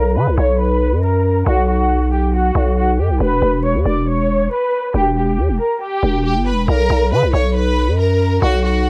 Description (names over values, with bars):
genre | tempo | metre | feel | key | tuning
hip hop, drill | 138 BPM | 4/4 | half-time | B harmonic minor | A4 = 442 Hz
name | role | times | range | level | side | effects
rich studio violin section | melody | 0.0-8.9 s | F#4 to D6 | -21 LUFS | equal | low-pass filter
growling 808-style bass | bass | 0.0-8.9 s | E1 to D3 | -18 LUFS | equal | none
room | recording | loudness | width
light reverb | dark, warm production, vinyl crackle | -16 LUFS | mono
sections
0.0-8.9 A section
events
filter sweep on violin section 0.0-6.7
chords
0.0 B5; 3.2 Em; 6.7 B5